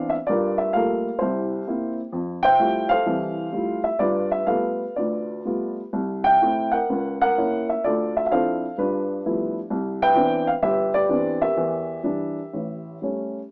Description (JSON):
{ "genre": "solo jazz", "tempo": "128 BPM", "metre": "4/4", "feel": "swing 67% on 8ths, uneven beats, rubato", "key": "C major", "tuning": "A4 = 440 Hz", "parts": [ { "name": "dark upright piano", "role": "solo", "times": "0.0-13.4 s", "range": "G1 to G5", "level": "-20 LUFS", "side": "equal", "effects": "none" } ], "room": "moderate studio reverb, RT60 0.5 s", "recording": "small speaker sound", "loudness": "-20 LUFS", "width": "side -27 dB against mid", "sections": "0.0-13.5 A section", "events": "none", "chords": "0.3 Gm9; 1.2 C7; 2.1 Fmaj9; 4.0 G9; 5.9 C6; 6.9 F#7/C#; 7.9 Dm9; 8.8 G13; 9.7 Cmaj9; 11.6 Em7b5; 12.5 A7" }